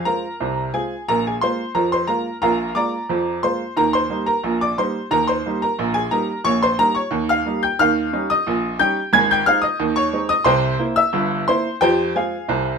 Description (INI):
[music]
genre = ragtime piano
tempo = 89 BPM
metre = 2/4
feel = straight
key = Eb major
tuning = A4 = 440 Hz
[part]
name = clear upright piano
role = solo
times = 0.0-12.8 s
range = G1 to Ab6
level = -17 LUFS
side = equal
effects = none
[sound]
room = moderate small room reverb, RT60 0.5 s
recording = minimal, uncompressed stereo recording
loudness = -17 LUFS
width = side -5 dB against mid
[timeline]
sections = 0.0-12.8 A section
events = none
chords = 0.0 Fm; 1.1 Bb7; 3.8 Eb; 6.5 Eb7/Bb; 7.8 Eb7; 9.1 Ab; 10.5 C7; 11.8 Fm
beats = 0.40 | 1.08 1.75 | 2.42 3.10 | 3.77 4.44 | 5.11 5.78 | 6.45 7.12 | 7.79 8.46 | 9.13 9.80 | 10.48 11.15 | 11.82 12.49